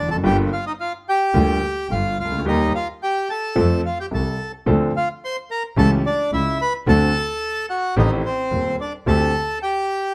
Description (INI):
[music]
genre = tango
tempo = 109 BPM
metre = 4/4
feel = rubato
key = G minor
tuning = A4 = 439 Hz
[part]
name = bandoneon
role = melody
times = 0.0-10.1 s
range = C4 to C6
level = -24 LUFS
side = equal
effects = none
[part]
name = warm concert grand piano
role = accompaniment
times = 0.0-9.3 s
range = Eb1 to A4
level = -24 LUFS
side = equal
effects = none
[part]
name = clear double bass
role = bass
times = 0.0-9.3 s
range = F1 to F2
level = -23 LUFS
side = equal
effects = none
[sound]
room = light reverb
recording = none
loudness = -21 LUFS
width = mono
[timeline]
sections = 0.0-10.1 A section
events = none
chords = 0.2 Gm7; 2.5 Eb; 3.6 F; 4.7 Dm7; 5.8 A7/C#; 6.9 D7; 8.0 Am7b5; 9.1 D7sus4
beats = | 0.23 0.79 1.34 1.90 | 2.46 3.01 3.57 4.12 | 4.67 5.22 5.77 6.32 | 6.87 7.42 7.97 8.52 | 9.07 9.62